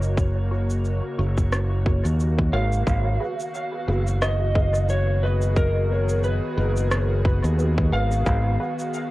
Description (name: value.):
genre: ambient dub.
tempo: 89 BPM.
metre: 4/4.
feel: swing 56% on 16ths.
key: G# dorian.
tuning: A4 = 441 Hz.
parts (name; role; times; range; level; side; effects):
electric slide guitar; melody; 0.0-9.1 s; A#4 to E#5; -28 LUFS; equal; cassette tape, dub echo.
airy breathy pad; sustained chords; 0.0-9.1 s; C#3 to A#4; -31 LUFS; equal; chorus, cassette tape.
modern bright fingered electric bass; bass; 0.0-8.6 s; F#1 to D#2; -22 LUFS; equal; none.
electronic cabasa and rim click; drums; 0.0-9.1 s; none; -31 LUFS; equal; overdrive, cassette tape, dub echo.
electronic kick drum; drums; 0.2-8.4 s; none; -22 LUFS; equal; overdrive, cassette tape.
filtered dub chord stab; stabs; 0.5-8.8 s; F#4 to C#5; -35 LUFS; right 1 dB; phaser, vintage 12-bit sampler grit, cassette tape, dub echo.
room: digital ambience.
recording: home recording on cassette.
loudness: -20 LUFS.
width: side -18 dB against mid.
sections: 0.0-2.9 A section; 2.9-9.1 B section.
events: none.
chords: 0.0 F#; 2.9 G#m7.